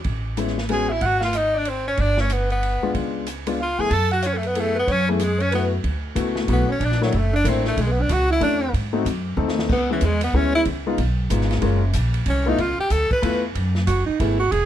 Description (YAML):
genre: jazz, small-group swing and bop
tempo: 187 BPM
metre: 3/4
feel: swing 63% on 8ths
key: F# minor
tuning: A4 = 439 Hz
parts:
  - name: open jazz drum kit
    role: drums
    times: 0.0-14.6 s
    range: crash cymbal, hi-hat, kick drum, ride cymbal, snare drum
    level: -30 LUFS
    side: right 1 dB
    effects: none
  - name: upright bass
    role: bass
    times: 0.1-14.7 s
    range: E1 to G#2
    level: -23 LUFS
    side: equal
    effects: none
  - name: clear upright piano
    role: accompaniment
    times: 0.4-14.4 s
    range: G#3 to A4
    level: -25 LUFS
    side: left 5 dB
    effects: none
  - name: edgy tenor saxophone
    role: melody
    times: 0.7-13.4 s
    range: E3 to B4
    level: -24 LUFS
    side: left 2 dB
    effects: none
  - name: clear alto saxophone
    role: second line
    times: 0.7-14.7 s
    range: E3 to A5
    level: -25 LUFS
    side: right 5 dB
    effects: none
room: little or no reverb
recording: close, detailed microphones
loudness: -19 LUFS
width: side -11 dB against mid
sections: 0.0-5.8 A section; 5.8-13.6 B section; 13.6-14.7 C section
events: drum fill 9.4-9.7; alto saxophone solo 13.6-14.7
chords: 0.1 Amaj7; 1.0 G#7#11; 2.0 G; 2.9 C#7b9; 3.9 F#m11; 5.8 D69; 6.8 F#7alt; 7.8 Bm11; 8.7 G#7b9; 9.7 C#m7; 10.7 C#9; 11.6 F#maj9; 12.6 C#7alt; 13.6 F#m11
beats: | 0.05 0.37 0.69 | 1.02 1.34 1.66 | 1.98 2.30 2.62 | 2.95 3.27 3.59 | 3.91 4.23 4.56 | 4.88 5.20 5.52 | 5.84 6.17 6.49 | 6.81 7.13 7.45 | 7.77 8.09 8.41 | 8.74 9.06 9.38 | 9.70 10.02 10.34 | 10.66 10.98 11.30 | 11.63 11.95 12.27 | 12.59 12.91 13.23 | 13.55 13.87 14.20 | 14.52